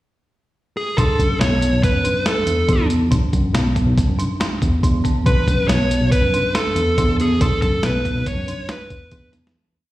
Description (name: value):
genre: progressive instrumental, band music in an uneven meter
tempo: 140 BPM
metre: 5/4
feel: straight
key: B dorian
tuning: A4 = 440 Hz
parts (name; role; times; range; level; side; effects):
- dark smooth lead guitar; melody; 0.8-9.3 s; G#4 to C#5; -21 LUFS; equal; overdrive, slapback echo
- folk marimba with medium hard mallets; arpeggios; 1.0-9.5 s; B3 to D4; -24 LUFS; equal; slapback echo
- bell-like tine electric piano; bass; 1.0-9.5 s; B1 to F#2; -20 LUFS; equal; auto-pan
- dusty soul sampler-style drum kit; drums; 1.0-9.6 s; hi-hat, kick drum, snare drum; -20 LUFS; equal; none
room: light reverb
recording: live gig heard through the venue's PA, recital hall reverb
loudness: -16 LUFS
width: side -16 dB against mid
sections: 0.0-1.0 pickup bar; 1.0-9.5 A section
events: fade-out 7.4-9.5; drum fill 9.3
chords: 0.0 N.C.; 1.0 Bm7